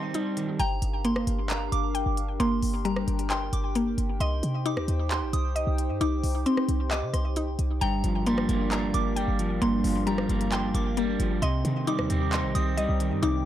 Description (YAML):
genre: hip hop, trap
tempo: 133 BPM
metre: 4/4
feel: half-time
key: G minor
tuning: A4 = 440 Hz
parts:
  - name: soft synth bell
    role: second line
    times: 0.0-13.5 s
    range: Bb5 to Eb6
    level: -35 LUFS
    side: right 2 dB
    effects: chorus, phaser, digital delay
  - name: electric guitar at the edge of break-up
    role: accompaniment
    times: 0.0-0.6, 7.8-13.5 s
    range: G2 to Eb4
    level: -29 LUFS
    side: right 2 dB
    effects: none
  - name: hollow soft pad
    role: sustained chords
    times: 0.0-13.5 s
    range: D4 to A5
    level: -35 LUFS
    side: right 1 dB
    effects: chorus
  - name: mallet-like synth pluck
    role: arpeggios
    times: 0.0-13.5 s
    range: G3 to G5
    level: -30 LUFS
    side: left 2 dB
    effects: chorus, digital delay
  - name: trap drum kit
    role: drums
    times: 0.1-13.3 s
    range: handclaps, hi-hat, rim click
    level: -34 LUFS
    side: equal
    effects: none
  - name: short 808-style bass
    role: bass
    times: 0.6-13.4 s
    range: G1 to C3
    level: -28 LUFS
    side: equal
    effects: none
room: digital ambience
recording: dark, warm production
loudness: -24 LUFS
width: side -12 dB against mid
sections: 0.6-13.5 A section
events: break 0.0-0.6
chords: 0.0 Cm; 0.6 Gm7; 4.2 Cm; 7.8 Gm7; 11.4 Cm